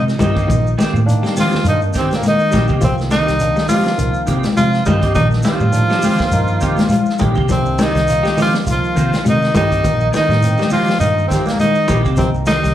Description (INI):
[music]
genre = afrobeat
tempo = 103 BPM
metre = 4/4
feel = swing 56% on 16ths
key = C minor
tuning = A4 = 440 Hz
[part]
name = breathy tenor saxophone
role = melody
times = 0.0-12.7 s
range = Bb3 to F4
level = -18 LUFS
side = equal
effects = slapback echo
[part]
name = semi-hollow electric guitar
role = arpeggios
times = 0.0-12.7 s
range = C3 to Bb3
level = -25 LUFS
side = left 5 dB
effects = slapback echo
[part]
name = vintage muted fingered electric bass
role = bass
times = 0.0-12.7 s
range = Bb1 to C3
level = -17 LUFS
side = equal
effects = none
[part]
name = vintage drum kit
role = drums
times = 0.1-12.7 s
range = hi-hat, kick drum, snare drum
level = -23 LUFS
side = equal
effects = none
[part]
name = shekere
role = percussion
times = 0.1-12.7 s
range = none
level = -27 LUFS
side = left 2 dB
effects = slapback echo
[part]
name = mellow trombone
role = second line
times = 0.2-12.7 s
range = Bb2 to F3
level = -24 LUFS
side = right 4 dB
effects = slapback echo, tape echo
[part]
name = semi-hollow electric guitar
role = stabs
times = 0.2-12.7 s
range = Eb3 to G4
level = -24 LUFS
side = right 4 dB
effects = ensemble chorus, slapback echo
[part]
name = congas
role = percussion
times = 0.2-12.6 s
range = none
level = -20 LUFS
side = left 3 dB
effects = none
[part]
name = barky tine electric piano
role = accompaniment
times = 0.3-12.4 s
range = Eb3 to G5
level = -26 LUFS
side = left 2 dB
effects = overdrive, slapback echo
[sound]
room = small room ambience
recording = live gig heard through the venue's PA, club reverb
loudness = -13 LUFS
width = side -12 dB against mid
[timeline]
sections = 0.0-12.7 A section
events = tine electric piano fill 6.3-7.5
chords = 0.0 Cm7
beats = | 0.48 1.06 1.65 2.23 | 2.81 3.40 3.98 4.57 | 5.15 5.74 6.32 6.91 | 7.49 8.08 8.66 9.25 | 9.83 10.42 11.00 11.59 | 12.17